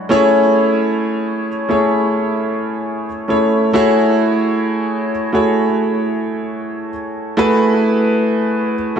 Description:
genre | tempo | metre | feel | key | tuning
R&B | 66 BPM | 4/4 | straight | F# minor | A4 = 441 Hz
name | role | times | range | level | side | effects
warm concert grand piano | solo | 0.0-9.0 s | F#3 to C#5 | -14 LUFS | equal | lush chorus, analog delay
room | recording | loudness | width
wet plate reverb, RT60 2.9 s | dreamy mix soaked in reverb | -14 LUFS | side -7 dB against mid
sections
0.0-9.0 A section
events
none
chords
0.1 Amaj7; 3.7 F#m9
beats
| 0.10 1.01 1.92 2.83 | 3.74 4.65 5.56 6.47 | 7.38 8.29

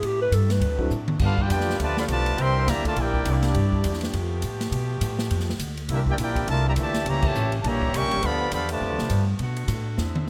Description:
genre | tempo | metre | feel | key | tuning
jazz, big band swing | 205 BPM | 4/4 | swing 60% on 8ths | unclear | A4 = 441 Hz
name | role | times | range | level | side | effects
growling clarinet | melody | 0.0-0.9 s | G4 to B4 | -28 LUFS | equal | none
mellow saxophone section | sustained chords | 0.0-10.3 s | C3 to G4 | -37 LUFS | equal | none
upright bass | bass | 0.0-10.3 s | G1 to B2 | -27 LUFS | equal | none
swinging big-band drum kit | drums | 0.0-10.2 s | crash cymbal, hi-hat, kick drum, ride cymbal, snare drum, toms | -33 LUFS | equal | none
warm concert grand piano | accompaniment | 0.8-0.9 s | F#3 to A4 | -32 LUFS | equal | none
mellow trumpet section | melody | 1.2-9.2 s | Bb3 to C#6 | -29 LUFS | equal | none
bright trombone section | second line | 1.2-9.2 s | A#2 to G4 | -33 LUFS | equal | none
room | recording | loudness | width
light reverb | close, detailed microphones | -24 LUFS | mono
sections
0.0-1.2 A section; 1.2-10.3 B section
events
clarinet solo 0.0-1.2; drum fill 0.9, 10.0; band accent 7.2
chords
0.0 Am7; 0.6 D7; 1.2 G9; 2.4 C9; 3.5 G9; 5.9 C9; 7.1 C#dim7; 8.2 G9; 9.4 Bm7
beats
| 0.03 0.33 0.62 0.91 | 1.21 1.50 1.79 2.09 | 2.38 2.67 2.96 3.26 | 3.55 3.84 4.13 4.42 | 4.72 5.01 5.30 5.59 | 5.88 6.18 6.47 6.76 | 7.05 7.34 7.64 7.93 | 8.22 8.51 8.80 9.10 | 9.39 9.68 9.97 10.27

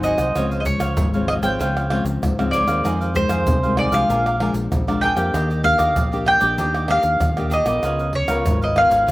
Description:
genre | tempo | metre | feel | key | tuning
samba and choro | 96 BPM | 4/4 | straight | unclear | A4 = 440 Hz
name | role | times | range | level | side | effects
mandolin | melody | 0.0-9.1 s | C5 to G5 | -19 LUFS | equal | none
cavaquinho | accompaniment | 0.0-9.1 s | D4 to Gb5 | -27 LUFS | right 3 dB | slapback echo
nylon-string guitar | accompaniment | 0.0-9.1 s | F2 to Bb4 | -25 LUFS | left 3 dB | slapback echo
deep dub fingered electric bass | bass | 0.0-9.1 s | Ab1 to F2 | -25 LUFS | equal | none
egg shaker, pandeiro, tamborim and surdo | percussion | 0.0-9.1 s | none | -25 LUFS | right 1 dB | none
room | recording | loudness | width
little or no reverb | recorded outdoors, with no room sound | -17 LUFS | side -18 dB against mid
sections
0.0-9.1 A section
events
none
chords
0.4 Dbmaj7; 2.8 Fm7; 4.1 Bb7; 5.3 Ebmaj7; 7.8 Db6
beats
| 0.36 0.98 1.60 2.23 | 2.85 3.47 4.09 4.72 | 5.34 5.96 6.59 7.21 | 7.83 8.46 9.08

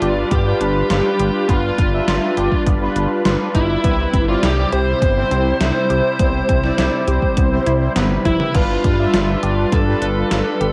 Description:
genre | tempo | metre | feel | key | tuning
synthwave | 102 BPM | 4/4 | straight | C major | A4 = 441 Hz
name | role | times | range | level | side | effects
bluesy overdriven lead guitar | melody | 0.0-10.7 s | E4 to C5 | -24 LUFS | equal | distortion, cassette tape, tape echo
FM electric piano with soft pad layer | second line | 0.0-10.7 s | E4 to C5 | -31 LUFS | equal | none
warm analog pad | sustained chords | 0.0-10.7 s | C3 to B4 | -28 LUFS | equal | chorus, sidechain pumping, cassette tape
analog pluck | arpeggios | 0.0-10.7 s | B3 to G4 | -30 LUFS | equal | none
analog synth brass | stabs | 0.0-10.7 s | G3 to E5 | -24 LUFS | equal | chorus, cassette tape
dark detuned saw bass | bass | 0.0-10.7 s | G1 to G2 | -23 LUFS | equal | sidechain pumping
gated 80s digital drum machine | drums | 0.0-10.7 s | crash cymbal, hi-hat, snare drum, toms | -26 LUFS | equal | gated reverb, gated reverb snare, overdrive, cassette tape
electronic kick drum | drums | 0.3-9.8 s | none | -21 LUFS | equal | overdrive, cassette tape
room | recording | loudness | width
moderate spring reverb, RT60 2.1 s | home recording on cassette | -17 LUFS | mono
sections
0.0-10.7 A section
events
drum fill 8.3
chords
0.0 G7; 3.8 Cmaj7; 8.5 G7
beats
0.31 0.90 | 1.49 2.08 2.67 3.25 | 3.84 4.43 5.02 5.61 | 6.20 6.78 7.37 7.96 | 8.55 9.14 9.72 10.31

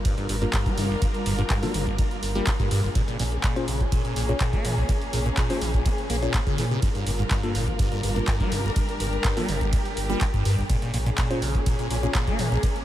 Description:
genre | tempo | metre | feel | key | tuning
acid house | 124 BPM | 4/4 | straight | G minor | A4 = 444 Hz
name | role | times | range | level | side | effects
dark chamber string section | sustained chords | 0.0-12.8 s | G3 to Bb4 | -31 LUFS | left 1 dB | sidechain pumping
liquid acid bass | riff | 0.1-12.7 s | G1 to Bb3 | -28 LUFS | equal | phaser, tube saturation, sidechain pumping, tape echo
electronic kick drum | drums | 0.1-12.7 s | none | -25 LUFS | equal | none
punchy analog drum machine | drums | 0.1-12.8 s | handclaps, hi-hat, ride cymbal | -32 LUFS | right 1 dB | none
round analog bass | bass | 0.3-12.6 s | G1 to Bb2 | -28 LUFS | equal | sidechain pumping
mellow tine electric piano | stabs | 0.4-12.1 s | Bb3 to Db5 | -34 LUFS | left 2 dB | wide subtle chorus, tape echo
room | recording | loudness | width
light reverb | none | -22 LUFS | side -13 dB against mid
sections
0.0-12.8 A section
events
none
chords
0.0 Gm7; 3.0 Bbm7; 6.8 Gm7; 10.7 Bbm7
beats
0.05 0.53 | 1.02 1.50 1.99 2.47 | 2.95 3.44 3.92 4.41 | 4.89 5.37 5.86 6.34 | 6.82 7.31 7.79 8.28 | 8.76 9.24 9.73 10.21 | 10.70 11.18 11.66 12.15 | 12.63

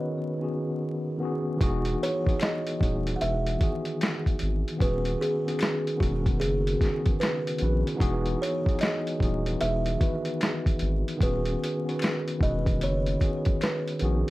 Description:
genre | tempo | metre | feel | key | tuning
lo-fi hip hop | 75 BPM | 4/4 | swing 64% on 16ths | B major | A4 = 439 Hz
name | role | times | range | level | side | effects
buzzing kalimba | melody | 0.0-14.2 s | F#4 to F#5 | -32 LUFS | right 1 dB | plate reverb
mellow tine electric piano | accompaniment | 0.0-14.3 s | C#3 to B4 | -30 LUFS | left 1 dB | medium stereo tremolo, cassette tape
saturated sub bass | bass | 1.6-14.2 s | D#1 to A#1 | -28 LUFS | equal | none
lo-fi sampler-style drum kit | drums | 1.6-14.3 s | hi-hat, kick drum, snare drum | -27 LUFS | equal | none
finger snaps | percussion | 2.4-13.8 s | none | -41 LUFS | left 5 dB | none
room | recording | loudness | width
light reverb | vinyl crackle | -24 LUFS | side -18 dB against mid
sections
0.0-14.3 A section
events
none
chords
0.0 B6/D#; 1.6 Emaj9; 4.8 B6/D#; 8.0 Emaj9; 11.2 B6/D#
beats
0.01 0.81 | 1.60 2.40 3.21 4.00 | 4.80 5.61 6.41 7.21 | 8.01 8.80 9.61 10.40 | 11.21 12.01 12.80 13.61

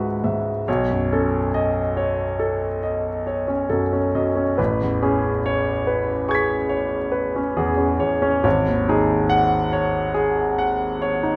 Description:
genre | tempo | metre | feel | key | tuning
classical, impressionist solo piano | 46 BPM (dotted quarters) | 9/8 | rubato | unclear | A4 = 441 Hz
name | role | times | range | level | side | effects
clear concert grand piano | solo | 0.0-11.4 s | G#1 to D#7 | -21 LUFS | equal | none
room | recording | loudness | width
wet recital hall reverb, RT60 1.3 s | none | -21 LUFS | mono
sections
0.0-11.4 A section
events
none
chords
0.0 C#m11; 0.7 B9; 4.6 Amaj9; 8.5 G#7sus4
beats
| 0.67 1.96 3.26 | 4.59 5.88 7.15 | 8.45 9.72 11.02

